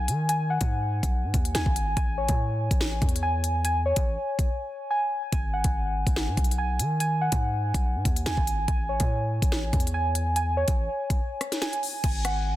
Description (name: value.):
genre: hip hop, drill.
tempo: 143 BPM.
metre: 4/4.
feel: half-time.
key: G# phrygian.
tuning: A4 = 441 Hz.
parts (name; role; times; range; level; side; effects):
muted felt-like synth keys; arpeggios; 0.0-12.6 s; C#5 to G#5; -28 LUFS; equal; chorus, low-pass filter, ping-pong delay.
hard-hitting 808-style bass; bass; 0.0-12.6 s; G#1 to D#3; -28 LUFS; equal; none.
drill drum kit; drums; 0.1-12.4 s; crash cymbal, hi-hat, kick drum, rim click, snare drum; -26 LUFS; equal; none.
room: digital ambience.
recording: dense, heavily limited modern master.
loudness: -24 LUFS.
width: side -14 dB against mid.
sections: 0.0-12.0 A section.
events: break 4.5-5.3, 11.2-12.0.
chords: 0.0 G#m7; 2.0 Amaj7; 5.3 G#m7; 8.7 Amaj7; 12.0 G#7(no3).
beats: | 0.29 0.71 1.13 1.55 | 1.97 2.39 2.81 3.23 | 3.65 4.07 4.49 4.91 | 5.33 5.74 6.16 6.58 | 7.00 7.42 7.84 8.26 | 8.68 9.10 9.52 9.94 | 10.36 10.78 11.20 11.62 | 12.04 12.46.